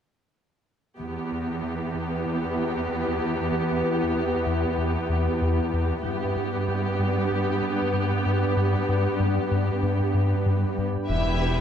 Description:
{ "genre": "cinematic", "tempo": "95 BPM", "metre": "4/4", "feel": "straight", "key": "E minor", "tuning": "A4 = 440 Hz", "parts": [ { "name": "rich studio viola section", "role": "accompaniment", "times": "1.0-11.6 s", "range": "B3 to G4", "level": "-30 LUFS", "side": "right 2 dB", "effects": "none" }, { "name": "glassy FM pad", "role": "sustained chords", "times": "1.6-11.6 s", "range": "B3 to B4", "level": "-28 LUFS", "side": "left 2 dB", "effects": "ensemble chorus, built-in reverb" }, { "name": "smooth synth bass", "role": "riff", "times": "1.0-11.0 s", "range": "E2 to G2", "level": "-28 LUFS", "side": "left 2 dB", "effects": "none" }, { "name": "rich symphonic cello section", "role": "bass", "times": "1.0-11.6 s", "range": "E2 to G2", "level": "-28 LUFS", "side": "right 3 dB", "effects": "none" }, { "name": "warm symphonic violin section", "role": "melody", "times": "11.1-11.6 s", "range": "E5", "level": "-29 LUFS", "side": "left 2 dB", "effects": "none" }, { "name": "warm studio violin section", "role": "second line", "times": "11.1-11.6 s", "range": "G4 to B4", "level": "-31 LUFS", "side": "left 4 dB", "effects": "none" }, { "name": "phased detuned saw bass", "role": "bass", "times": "11.1-11.6 s", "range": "E1", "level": "-25 LUFS", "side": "equal", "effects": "phaser" } ], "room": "moderate recital hall reverb, RT60 1.4 s", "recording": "dark, warm production", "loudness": "-23 LUFS", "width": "side -8 dB against mid", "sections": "1.0-11.1 A section", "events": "none", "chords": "1.0 Em; 6.0 G; 11.1 Em", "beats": "| 0.99 1.62 2.25 2.88 | 3.52 4.15 4.78 5.41 | 6.04 6.67 7.30 7.94 | 8.57 9.20 9.83 10.46 | 11.09" }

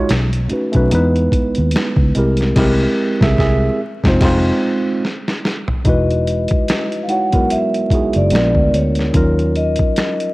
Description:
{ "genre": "R&B, neo-soul", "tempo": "73 BPM", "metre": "4/4", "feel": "swing 58% on 16ths", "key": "unclear", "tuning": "A4 = 441 Hz", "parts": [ { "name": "mellow tine electric piano", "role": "accompaniment", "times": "0.0-10.3 s", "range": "F#3 to E5", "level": "-18 LUFS", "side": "right 1 dB", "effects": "auto-pan" }, { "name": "vintage muted fingered electric bass", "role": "bass", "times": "0.1-9.8 s", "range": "E1 to E2", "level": "-17 LUFS", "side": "equal", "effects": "transformer saturation" }, { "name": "boom bap sampler-style drum kit", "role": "drums", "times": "0.1-10.3 s", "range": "crash cymbal, finger snaps, hi-hat, kick drum, snare drum, toms", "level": "-18 LUFS", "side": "equal", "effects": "none" }, { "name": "vibraphone with soft mallets", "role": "melody", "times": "5.9-10.3 s", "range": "Db5 to F#5", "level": "-20 LUFS", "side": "left 1 dB", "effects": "none" } ], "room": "light reverb, digital ambience", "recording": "worn, warbling old tape, cassette tape, vinyl crackle, warbly pitch drift", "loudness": "-13 LUFS", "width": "side -20 dB against mid", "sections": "0.0-5.9 A section; 5.9-10.3 B section", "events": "band accent 2.6-5.9; drum fill 5.0-5.9", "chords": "0.1 B9; 0.9 Emaj7; 2.2 C7b13; 3.8 Fm7; 5.0 N.C.; 5.9 Emaj9; 8.3 Bb7b9; 9.1 Ebm9", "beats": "0.10 0.92 1.74 | 2.56 3.38 4.21 5.03 | 5.85 6.67 7.50 8.32 | 9.14 9.96" }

